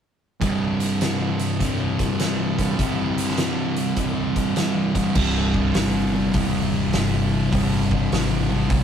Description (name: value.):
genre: stoner and doom metal.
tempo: 102 BPM.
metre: 4/4.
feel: swing 66% on 8ths.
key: unclear.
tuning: A4 = 440 Hz.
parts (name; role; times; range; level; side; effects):
thick fuzz guitar; riff; 0.4-8.8 s; C2 to C3; -24 LUFS; left 5 dB; distortion.
thick fuzz guitar; riff; 0.4-8.8 s; C2 to C3; -24 LUFS; right 4 dB; distortion.
oversized low-tuned drum kit; drums; 0.4-8.8 s; crash cymbal, hi-hat, kick drum, snare drum; -25 LUFS; equal; none.
modern bright fingered electric bass; bass; 5.2-8.8 s; C1 to Bb1; -26 LUFS; equal; tube saturation.
room: light reverb.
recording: rough rehearsal-room recording, tube saturation.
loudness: -19 LUFS.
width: side -8 dB against mid.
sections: 0.4-5.2 A section; 5.2-8.8 B section.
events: none.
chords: 0.4 C5; 5.2 Cm.